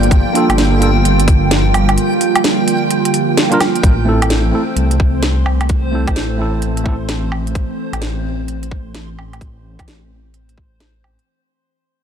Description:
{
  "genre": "future garage",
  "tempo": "129 BPM",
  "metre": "4/4",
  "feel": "swing 64% on 16ths",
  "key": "A phrygian",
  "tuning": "A4 = 441 Hz",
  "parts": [
    { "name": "warbly tape-like pad", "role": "sustained chords", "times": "0.0-11.2 s", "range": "D3 to F4", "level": "-18 LUFS", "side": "right 3 dB", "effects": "chorus, built-in reverb, phaser, sidechain pumping" },
    { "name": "dark detuned saw bass", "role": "bass", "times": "0.0-11.2 s", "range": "G1 to C2", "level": "-17 LUFS", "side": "equal", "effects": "sidechain pumping" },
    { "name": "organic electronic drum kit", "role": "drums", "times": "0.0-11.3 s", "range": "hi-hat, snare drum, woodblock", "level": "-19 LUFS", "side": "equal", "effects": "overdrive" },
    { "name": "backwards swelling texture", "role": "texture", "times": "0.0-11.3 s", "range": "C5 to G5", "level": "-24 LUFS", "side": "equal", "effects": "built-in reverb" },
    { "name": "electronic kick drum", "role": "drums", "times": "0.1-10.7 s", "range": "none", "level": "-14 LUFS", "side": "equal", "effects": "overdrive" },
    { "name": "tine electric piano", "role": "accompaniment", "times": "0.3-7.0 s", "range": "A3 to Bb4", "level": "-20 LUFS", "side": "right 2 dB", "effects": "sidechain pumping, tape echo" }
  ],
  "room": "light reverb, digital ambience",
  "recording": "dense, heavily limited modern master",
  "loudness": "-12 LUFS",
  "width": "side -8 dB against mid",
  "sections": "0.0-3.8 A section; 3.8-11.3 B section",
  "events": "fade-out 3.8-11.3",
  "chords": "0.0 Gm7; 3.8 Am"
}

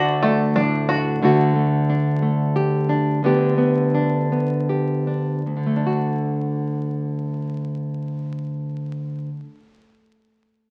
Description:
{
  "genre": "folk",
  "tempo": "75-91 BPM",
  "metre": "3/4",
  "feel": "straight",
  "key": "D major",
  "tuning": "A4 = 441 Hz",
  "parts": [
    { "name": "picked steel-string acoustic guitar", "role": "melody", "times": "0.0-0.8 s", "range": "D5", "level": "-32 LUFS", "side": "equal", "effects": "none" },
    { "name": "nylon-string guitar", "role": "accompaniment", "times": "0.0-9.7 s", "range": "D2 to G4", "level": "-22 LUFS", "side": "equal", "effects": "none" },
    { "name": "bluegrass banjo", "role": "arpeggios", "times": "0.0-1.3 s", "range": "D3 to F#4", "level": "-24 LUFS", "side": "equal", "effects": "none" },
    { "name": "upright bass", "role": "bass", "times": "0.0-1.2 s", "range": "D2", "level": "-35 LUFS", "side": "equal", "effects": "none" }
  ],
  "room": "wet club ambience, RT60 0.5 s",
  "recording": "very old 78 rpm record, vinyl crackle",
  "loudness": "-21 LUFS",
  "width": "mono",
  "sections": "0.0-1.2 A section; 1.2-5.5 B section; 5.5-10.2 C section",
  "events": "slowing down 1.2-5.5",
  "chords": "0.0 D; 3.2 G/D; 5.5 D"
}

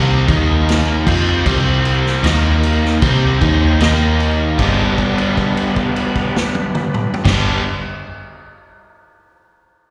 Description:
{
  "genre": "blues rock power trio and southern rock",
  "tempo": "77 BPM",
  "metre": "4/4",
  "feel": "straight",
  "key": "unclear",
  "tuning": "A4 = 439 Hz",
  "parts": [
    { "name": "overdriven electric guitar", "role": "riff", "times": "0.0-7.6 s", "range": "G2 to F4", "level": "-20 LUFS", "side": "equal", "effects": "slapback echo" },
    { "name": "vintage muted picked electric bass", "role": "bass", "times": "0.0-7.6 s", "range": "G1 to F2", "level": "-19 LUFS", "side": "equal", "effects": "none" },
    { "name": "overdriven tonewheel organ", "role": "sustained chords", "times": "0.3-7.6 s", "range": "G3 to C5", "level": "-28 LUFS", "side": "equal", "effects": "slow rotary speaker, chorus vibrato" },
    { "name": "vintage drum kit", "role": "drums", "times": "0.3-7.4 s", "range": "crash cymbal, kick drum, snare drum, toms", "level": "-22 LUFS", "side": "equal", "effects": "none" }
  ],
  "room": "little or no reverb",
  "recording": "live gig heard through the venue's PA, recital hall reverb",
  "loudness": "-15 LUFS",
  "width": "mono",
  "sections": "0.0-4.6 A section; 4.6-7.7 B section",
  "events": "held note 4.6-7.3",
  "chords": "0.3 Eb5; 1.1 C5; 2.2 Eb5; 3.0 C5; 3.8 Eb5; 4.6 G"
}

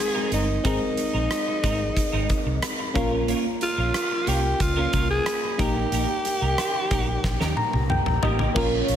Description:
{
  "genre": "1980s-style pop",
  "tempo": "91 BPM",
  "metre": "4/4",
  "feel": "straight",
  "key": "unclear",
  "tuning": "A4 = 438 Hz",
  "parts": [
    { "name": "raspy alto saxophone", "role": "melody", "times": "0.0-7.9 s", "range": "Eb4 to Ab4", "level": "-26 LUFS", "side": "equal", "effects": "none" },
    { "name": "FM electric piano", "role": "accompaniment", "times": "0.0-9.0 s", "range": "Ab3 to Bb5", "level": "-28 LUFS", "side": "left 2 dB", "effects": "chorus" },
    { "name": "twelve-string electric guitar", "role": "riff", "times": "0.0-8.9 s", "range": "Ab3 to Bb4", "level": "-32 LUFS", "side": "right 4 dB", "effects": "ensemble chorus" },
    { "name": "vintage muted fingered electric bass", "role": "bass", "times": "0.3-9.0 s", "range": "G1 to Eb2", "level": "-26 LUFS", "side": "equal", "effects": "none" },
    { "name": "huge arena drum kit", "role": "drums", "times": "0.3-9.0 s", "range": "crash cymbal, hi-hat, kick drum, rim click, snare drum, toms", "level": "-27 LUFS", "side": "equal", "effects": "none" },
    { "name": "sweeping resonant pad", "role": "sustained chords", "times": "8.6-9.0 s", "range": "Bb4 to Db6", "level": "-29 LUFS", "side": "right 2 dB", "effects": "chorus" }
  ],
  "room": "light reverb, studio reverb",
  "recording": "none",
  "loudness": "-21 LUFS",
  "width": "side -9 dB against mid",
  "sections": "0.0-8.6 A section",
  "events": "drum fill 7.2-8.6; FM electric piano fill 7.2-8.6",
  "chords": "0.0 Abadd9; 3.0 Bbm; 5.6 Eb/Bb"
}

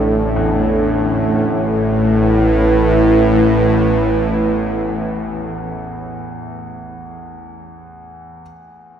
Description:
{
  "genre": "dark ambient drone",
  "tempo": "54 BPM",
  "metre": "4/4",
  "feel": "straight",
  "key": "unclear",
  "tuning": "A4 = 439 Hz",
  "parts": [
    { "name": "dark analog pad", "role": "sustained chords", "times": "0.0-6.3 s", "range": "A3 to D5", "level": "-16 LUFS", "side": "right 1 dB", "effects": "chorus" },
    { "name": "clear concert grand piano", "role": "arpeggios", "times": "0.0-8.4 s", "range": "E2 to E3", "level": "-29 LUFS", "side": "left 2 dB", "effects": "tape echo" },
    { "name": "bowed-like drone", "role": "drone", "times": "0.0-5.9 s", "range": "A1 to A2", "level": "-18 LUFS", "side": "equal", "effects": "built-in reverb" }
  ],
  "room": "wet cathedral reverb, RT60 5.4 s",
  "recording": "none",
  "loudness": "-13 LUFS",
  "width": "side -8 dB against mid",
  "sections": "0.0-1.5 A section; 1.5-5.9 B section",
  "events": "none",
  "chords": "0.0 Dsus2/A; 1.5 A5"
}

